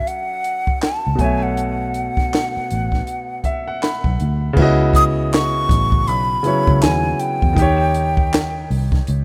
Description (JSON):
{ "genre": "R&B, neo-soul", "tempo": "80 BPM", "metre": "4/4", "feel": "swing 61% on 16ths", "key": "unclear", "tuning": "A4 = 442 Hz", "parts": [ { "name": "breathy jazz flute", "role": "melody", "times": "0.0-8.7 s", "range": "F#5 to D#6", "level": "-23 LUFS", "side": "equal", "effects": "none" }, { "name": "clear grand piano", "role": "accompaniment", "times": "0.0-9.2 s", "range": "B2 to B5", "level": "-24 LUFS", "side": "equal", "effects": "none" }, { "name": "compact cocktail drum kit", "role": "drums", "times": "0.1-9.2 s", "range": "crash cymbal, handclaps, hi-hat, kick drum, snare drum", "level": "-22 LUFS", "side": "equal", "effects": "none" }, { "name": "vintage muted fingered electric bass", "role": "bass", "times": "0.8-9.2 s", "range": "A1 to E2", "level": "-23 LUFS", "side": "equal", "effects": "none" } ], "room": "light reverb, small room ambience", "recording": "rough home demo mix", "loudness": "-18 LUFS", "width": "mono", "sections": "0.0-4.6 A section; 4.6-9.2 B section", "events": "grand piano fill 3.1-4.6", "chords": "0.0 F#m7; 1.2 B9sus4; 4.6 C#m11; 7.6 D#7", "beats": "0.07 0.81 | 1.56 2.31 3.06 3.81 | 4.57 5.32 6.07 6.82 | 7.57 8.31 9.06" }